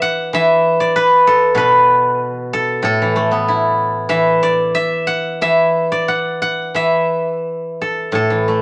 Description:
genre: chinese traditional, Chinese solo plucked strings.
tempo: 86-99 BPM.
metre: 4/4.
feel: rubato.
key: A zhi mode.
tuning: A4 = 439 Hz.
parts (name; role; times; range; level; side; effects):
steel-string zither; solo; 0.0-8.6 s; A2 to F#5; -16 LUFS; equal; none.
room: light reverb.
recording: none.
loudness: -16 LUFS.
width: mono.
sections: 0.0-8.6 A section.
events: none.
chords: none.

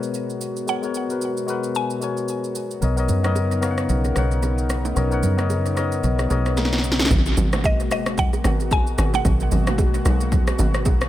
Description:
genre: amapiano.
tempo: 112 BPM.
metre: 4/4.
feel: swing 58% on 16ths.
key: G# minor.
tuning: A4 = 445 Hz.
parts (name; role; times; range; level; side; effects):
mallet-like synth pluck; melody; 0.0-2.5, 7.7-10.2 s; D#5 to G#5; -27 LUFS; right 1 dB; chorus, tape echo.
tine electric piano; accompaniment; 0.0-7.1 s; G#3 to A#5; -26 LUFS; left 5 dB; none.
warm analog pad; sustained chords; 0.0-11.1 s; B2 to A#4; -28 LUFS; equal; chorus.
deep house drum kit; drums; 0.0-11.1 s; kick drum, rim click, shaker, snare drum; -23 LUFS; equal; tape echo.
deep dub fingered electric bass; bass; 2.8-7.1 s; B1 to F#2; -21 LUFS; equal; none.
congas and bongos; percussion; 2.8-11.0 s; none; -30 LUFS; right 5 dB; tape echo.
tight log drum bass; bass; 7.1-11.1 s; F#1 to B1; -21 LUFS; equal; none.
room: light reverb.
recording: echo-heavy mix.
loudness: -19 LUFS.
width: side -13 dB against mid.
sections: 0.0-7.1 A section; 7.1-11.1 B section.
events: tine electric piano fill 6.3-7.1; drum fill 6.6-7.1; drop 7.1-11.1.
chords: 0.0 G#m9; 2.8 Bmaj9; 7.1 G#m9.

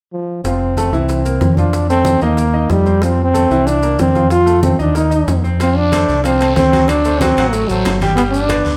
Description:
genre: latin, salsa.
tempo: 186 BPM.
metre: 4/4.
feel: straight.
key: F major.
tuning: A4 = 441 Hz.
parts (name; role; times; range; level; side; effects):
clear trombone; melody; 0.1-8.8 s; F3 to F4; -17 LUFS; equal; none.
fingered electric bass; bass; 0.4-8.8 s; F1 to F2; -20 LUFS; equal; none.
bongos; percussion; 0.4-8.7 s; none; -32 LUFS; equal; none.
congas; percussion; 0.4-8.8 s; none; -25 LUFS; equal; none.
maracas; percussion; 0.4-8.8 s; none; -37 LUFS; equal; none.
bright upright piano; accompaniment; 0.5-8.8 s; E3 to G5; -24 LUFS; equal; none.
guiro; percussion; 5.6-8.8 s; none; -33 LUFS; equal; none.
timbales; percussion; 5.6-8.7 s; none; -30 LUFS; equal; none.
room: wet large studio reverb, RT60 1.3 s.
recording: band playing live in one room.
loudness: -14 LUFS.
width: mono.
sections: 0.4-5.6 A section; 5.6-8.8 B section.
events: none.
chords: 0.4 F; 1.1 C7; 1.7 F; 2.4 Eb; 3.0 F; 3.7 C7; 4.3 F; 5.0 Eb5; 5.6 F; 6.9 D7; 8.2 G.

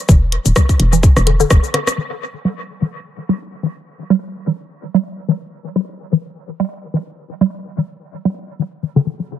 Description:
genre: minimal techno.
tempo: 127 BPM.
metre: 4/4.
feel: swing 56% on 16ths.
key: E minor.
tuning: A4 = 440 Hz.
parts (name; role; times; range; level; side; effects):
hollow square pluck; riff; 0.1-9.2 s; D3 to G3; -17 LUFS; equal; chorus, phaser, sidechain pumping, dub echo.
hollow knocking FM bass; bass; 0.1-1.6 s; D1 to E1; -14 LUFS; equal; sidechain pumping.
electronic kick drum; drums; 0.1-1.6 s; none; -11 LUFS; equal; none.
garage drum kit; drums; 0.1-2.0 s; cabasa, hi-hat, rim click; -21 LUFS; left 1 dB; dub echo.
room: light reverb.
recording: echo-heavy mix.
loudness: -16 LUFS.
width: side -11 dB against mid.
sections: 0.0-2.0 A section; 2.0-9.4 B section.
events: filter sweep on synth arpeggio sound 0.0-2.0, 2.0-9.4; drum fill 1.7.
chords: 0.0 N.C.; 2.0 Em.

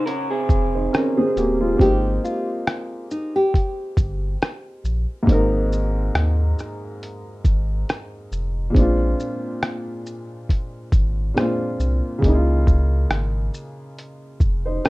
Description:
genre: lo-fi hip hop.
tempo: 69 BPM.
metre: 4/4.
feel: swing 56% on 16ths.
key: Ab major.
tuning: A4 = 436 Hz.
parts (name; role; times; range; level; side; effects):
electric guitar through a small old amp; second line; 0.0-1.6 s; C4 to Bb4; -24 LUFS; right 1 dB; wide subtle chorus, tape echo.
warm upright piano; accompaniment; 0.0-14.9 s; Ab2 to C5; -24 LUFS; equal; cassette tape.
lo-fi sampler-style drum kit; drums; 0.1-14.9 s; hi-hat, kick drum, rim click, shaker; -19 LUFS; equal; vintage 12-bit sampler grit.
warm sub bass; bass; 0.5-14.8 s; Eb1 to Eb2; -21 LUFS; equal; none.
nylon-string guitar; melody; 1.8-4.6 s; Eb4 to G4; -23 LUFS; equal; none.
room: light reverb.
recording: rough home demo mix.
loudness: -18 LUFS.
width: side -20 dB against mid.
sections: 0.0-14.9 A section.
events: none.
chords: 0.0 Db6; 1.8 Abmaj7; 8.8 Bb9; 12.2 Db6.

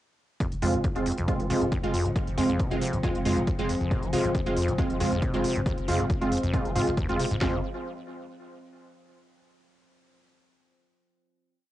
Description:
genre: driving peak-time techno.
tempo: 137 BPM.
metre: 4/4.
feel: straight.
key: F minor.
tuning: A4 = 440 Hz.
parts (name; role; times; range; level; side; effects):
acid bass, saw; riff; 0.4-7.6 s; Eb2 to F3; -31 LUFS; equal; sidechain pumping, tape echo.
metallic inharmonic drone; drone; 1.7-7.5 s; F3 to C4; -36 LUFS; left 3 dB; chorus, built-in reverb, sidechain pumping.
electronic hi-hat; drums; 0.4-7.4 s; none; -40 LUFS; right 1 dB; sidechain pumping on hats, cassette tape.
techno drum kit; drums; 0.4-7.5 s; kick drum, snare drum; -30 LUFS; equal; cassette tape.
growling 808-style bass; bass; 0.5-7.6 s; F1; -34 LUFS; equal; overdrive, sidechain pumping, low-pass filter.
rave stab; stabs; 0.6-7.6 s; Ab3 to F4; -28 LUFS; right 1 dB; chorus, built-in reverb, sidechain pumping, tape echo.
room: moderate small room reverb, RT60 0.6 s.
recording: home recording on cassette, nothing above 10.4 kHz.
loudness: -24 LUFS.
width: side -14 dB against mid.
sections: 0.4-7.4 groove; 7.4-9.2 final chord.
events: none.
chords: 0.4 Fm.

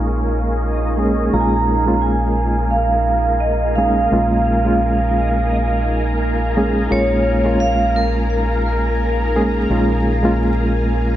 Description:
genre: trip hop.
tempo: 86 BPM.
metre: 4/4.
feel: swing 54% on 16ths.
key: Bb minor.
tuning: A4 = 438 Hz.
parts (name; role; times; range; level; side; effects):
reed electric piano; accompaniment; 0.0-11.2 s; Ab3 to Ab4; -20 LUFS; equal; tremolo, tape echo.
string machine, cellos; sustained chords; 0.0-11.2 s; Bb4 to Db6; -24 LUFS; equal; ensemble chorus.
deep dub fingered electric bass; bass; 0.0-11.2 s; Bb1; -20 LUFS; equal; none.
backwards swelling texture; texture; 0.0-11.2 s; Eb4; -30 LUFS; right 2 dB; built-in reverb.
vibraphone with hard mallets; melody; 1.3-11.2 s; Bb4 to Bb5; -21 LUFS; right 2 dB; vintage 12-bit sampler grit, tape echo.
room: light reverb, digital ambience.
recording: dark, warm production, vinyl crackle, low-pass filter.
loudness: -15 LUFS.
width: side -12 dB against mid.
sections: 0.0-11.2 A section.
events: filter sweep on string machine 0.0-11.2; filter sweep 0.0-11.2.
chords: 0.0 Bbm7.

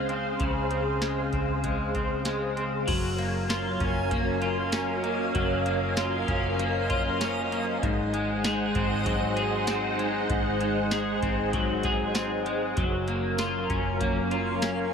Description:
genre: dream pop.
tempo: 97 BPM.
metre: 4/4.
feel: straight.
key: Gb lydian.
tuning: A4 = 438 Hz.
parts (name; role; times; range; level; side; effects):
soft string machine; sustained chords; 0.0-14.9 s; Db3 to Gb5; -29 LUFS; equal; phaser, ensemble chorus.
electric guitar at the edge of break-up; arpeggios; 0.0-14.9 s; Ab2 to Ab4; -29 LUFS; left 1 dB; analog chorus, digital delay.
vintage muted fingered electric bass; bass; 0.0-14.9 s; Gb1 to Db2; -34 LUFS; equal; none.
booming analog drum machine; drums; 0.1-14.8 s; crash cymbal, hi-hat, kick drum, snare drum, tambourine; -31 LUFS; equal; none.
backwards swelling texture; texture; 3.3-9.3, 13.9-14.9 s; C5 to Ab5; -40 LUFS; right 1 dB; built-in reverb, digital delay.
room: moderate plate reverb, RT60 2.3 s.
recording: none.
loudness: -25 LUFS.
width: side -6 dB against mid.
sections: 0.0-2.9 A section; 2.9-14.9 B section.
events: none.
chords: 0.0 Dbmaj7; 2.9 Gbmaj7; 7.8 Ab7; 12.8 Gbmaj7.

